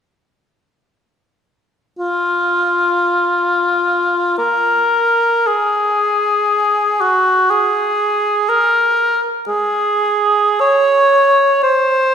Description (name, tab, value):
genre	classical, free, expressive piece for unaccompanied cor anglais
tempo	44-62 BPM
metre	3/4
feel	rubato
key	unclear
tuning	A4 = 441 Hz
part	warm cor anglais	solo	2.0-12.1 s	F4 to Db5	-12 LUFS	equal	none
room	wet concert hall reverb, RT60 1.8 s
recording	recorded in a church or concert hall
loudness	-12 LUFS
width	side -7 dB against mid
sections	2.0-12.1 A section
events	none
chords	none